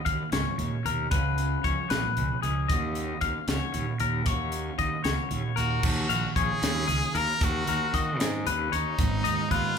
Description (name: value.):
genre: math rock and midwest emo.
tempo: 76 BPM (dotted quarters).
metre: 6/8.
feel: straight.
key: Eb minor.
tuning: A4 = 439 Hz.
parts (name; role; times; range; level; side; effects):
clean electric guitar; accompaniment; 0.0-9.8 s; Eb2 to Gb4; -32 LUFS; right 5 dB; none.
twangy electric guitar; arpeggios; 0.0-9.8 s; Ab4 to F5; -30 LUFS; left 8 dB; none.
fuzz fingered electric bass; bass; 0.1-9.6 s; Ab1 to Eb3; -31 LUFS; right 1 dB; overdrive.
crisp fusion drum kit; drums; 0.1-9.6 s; crash cymbal, hi-hat, kick drum, snare drum; -30 LUFS; equal; none.
brilliant trumpet; melody; 5.6-9.8 s; Eb4 to Bb4; -31 LUFS; right 1 dB; none.
room: moderate large studio reverb, RT60 0.8 s.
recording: band playing live in one room.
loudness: -25 LUFS.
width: side -6 dB against mid.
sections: 0.0-5.8 A section; 5.8-9.8 B section.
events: none.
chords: 0.0 Ebm9; 1.1 Db7; 2.7 Ebm9; 4.3 Ebm7; 9.0 Abmadd11.